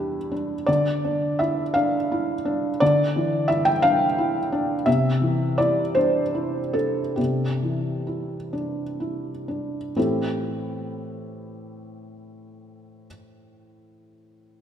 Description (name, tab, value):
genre	neoclassical minimalist piano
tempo	41-59 BPM (dotted quarters)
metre	6/8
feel	rubato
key	A minor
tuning	A4 = 440 Hz
part	felt-muted upright piano	solo	0.0-14.6 s	E2 to G5	-22 LUFS	equal	none
room	moderate concert hall reverb, RT60 2.5 s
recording	minimal, uncompressed stereo recording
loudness	-21 LUFS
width	side -9 dB against mid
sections	0.0-10.0 A section; 10.0-14.6 B section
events	slowing down 3.8-10.0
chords	0.0 Em7; 0.7 Dmadd9; 4.9 Cadd9; 10.0 Am7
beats	| 0.68 1.75 | 2.81 3.84 | 4.87 5.97 | 7.18 8.53 | 9.96 11.37 | 12.78 14.22